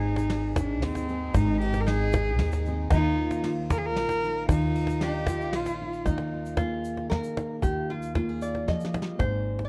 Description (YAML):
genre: acoustic folk duo or small band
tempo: 115 BPM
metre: 3/4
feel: straight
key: unclear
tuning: A4 = 435 Hz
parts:
  - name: warm cello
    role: melody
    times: 0.0-5.9 s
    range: C4 to Bb4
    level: -32 LUFS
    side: equal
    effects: none
  - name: lap resonator guitar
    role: second line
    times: 0.0-9.7 s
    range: Eb4 to Eb5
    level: -38 LUFS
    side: equal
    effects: none
  - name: fingerpicked steel-string acoustic guitar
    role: accompaniment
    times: 0.0-9.7 s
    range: Ab2 to Ab4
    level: -35 LUFS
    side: equal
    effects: none
  - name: warm French horn section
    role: sustained chords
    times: 0.0-6.0 s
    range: C3 to F4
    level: -43 LUFS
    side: equal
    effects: none
  - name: upright bass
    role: bass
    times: 0.0-9.7 s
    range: Ab1 to Eb2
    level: -32 LUFS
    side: equal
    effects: none
  - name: cajon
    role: percussion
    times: 0.0-9.7 s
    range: none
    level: -31 LUFS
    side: equal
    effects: none
  - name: tube shaker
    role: percussion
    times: 0.2-9.0 s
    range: none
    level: -55 LUFS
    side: equal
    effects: none
  - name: soft brush drum kit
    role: drums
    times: 0.3-9.3 s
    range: hi-hat, kick drum, ride cymbal, snare drum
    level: -35 LUFS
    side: equal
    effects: none
room: little or no reverb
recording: dark, warm production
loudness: -27 LUFS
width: mono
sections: 0.0-6.1 A section; 6.1-9.2 B section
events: drum fill 8.7-9.2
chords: 0.0 Ab; 2.9 Ebsus2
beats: 0.30 0.83 | 1.35 1.87 2.40 | 2.92 3.44 3.97 | 4.49 5.01 5.54 | 6.06 6.58 7.11 | 7.63 8.16 8.68 | 9.21